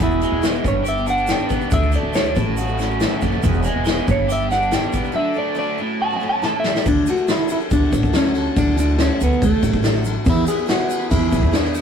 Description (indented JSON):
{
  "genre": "folk rock and heartland rock",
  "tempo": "140 BPM",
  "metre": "4/4",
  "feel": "straight",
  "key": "unclear",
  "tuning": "A4 = 438 Hz",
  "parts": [
    { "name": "semi-hollow electric guitar", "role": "melody", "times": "0.0-11.8 s", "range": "A3 to A5", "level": "-21 LUFS", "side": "right 1 dB", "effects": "none" },
    { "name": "picked steel-string acoustic guitar", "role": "accompaniment", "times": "0.0-11.8 s", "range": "G2 to A4", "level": "-28 LUFS", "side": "left 2 dB", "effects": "none" },
    { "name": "rich studio string section", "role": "sustained chords", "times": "0.0-11.8 s", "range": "F#4 to B5", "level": "-34 LUFS", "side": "equal", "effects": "none" },
    { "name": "overdriven electric guitar", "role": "riff", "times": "0.0-6.9 s", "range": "E2 to G4", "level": "-24 LUFS", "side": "right 1 dB", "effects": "spring reverb" },
    { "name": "upright bass", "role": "bass", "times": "0.0-11.8 s", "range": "E1 to E2", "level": "-21 LUFS", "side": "right 1 dB", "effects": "none" },
    { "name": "soft brush drum kit", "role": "drums", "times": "0.0-11.8 s", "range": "crash cymbal, hi-hat, kick drum, ride cymbal, snare drum", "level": "-21 LUFS", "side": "left 1 dB", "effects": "none" },
    { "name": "tube shaker", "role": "percussion", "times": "0.0-11.8 s", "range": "none", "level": "-40 LUFS", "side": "right 6 dB", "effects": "none" }
  ],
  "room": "moderate small room reverb, RT60 0.6 s",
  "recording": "rough rehearsal-room recording",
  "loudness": "-16 LUFS",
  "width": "side -7 dB against mid",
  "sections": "0.0-6.9 A section; 6.9-11.8 B section",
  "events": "clean electric guitar solo 0.0-6.9; drum fill 6.4-6.9",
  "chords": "0.0 Eadd9; 0.7 G; 1.7 D; 2.4 A6; 3.4 Eadd9; 4.1 G; 5.2 D; 5.8 A6; 6.4 A7; 6.9 D; 10.3 E",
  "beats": "| 0.01 0.44 0.86 1.29 | 1.72 2.15 2.58 3.01 | 3.44 3.87 4.29 4.72 | 5.15 5.58 6.01 6.43 | 6.86 7.29 7.71 8.14 | 8.57 8.99 9.42 9.84 | 10.27 10.69 11.11 11.54"
}